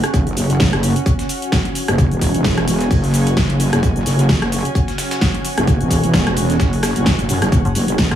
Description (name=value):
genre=bass house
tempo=130 BPM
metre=4/4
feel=swing 56% on 16ths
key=unclear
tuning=A4 = 440 Hz
part: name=big-room dance drum kit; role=drums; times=0.0-8.2 s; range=hi-hat, rim click, shaker, snare drum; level=-21 LUFS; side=equal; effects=none
part: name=dusty soul sampler-style drum kit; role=drums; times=0.0-8.2 s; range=hi-hat, snare drum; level=-31 LUFS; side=right 2 dB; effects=sidechain pumping on hats, high-pass filter on hats, high-pass filter on snare, high-pass filter on room
part: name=granular cloud pad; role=texture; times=0.0-8.2 s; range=C#4 to G#5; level=-23 LUFS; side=right 1 dB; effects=built-in reverb, sidechain pumping
part: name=wobble bass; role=bass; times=0.1-8.1 s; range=E1 to F#2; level=-17 LUFS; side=equal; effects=chorus, overdrive, sidechain pumping
part: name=electronic kick drum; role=drums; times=0.1-8.1 s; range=none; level=-19 LUFS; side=equal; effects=none
part: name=metallic FM bass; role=bass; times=7.7-8.2 s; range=F#1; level=-18 LUFS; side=left 1 dB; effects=overdrive, sidechain pumping
room=light reverb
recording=small room ambience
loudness=-14 LUFS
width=side -10 dB against mid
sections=0.0-8.2 A section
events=none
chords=0.0 F#5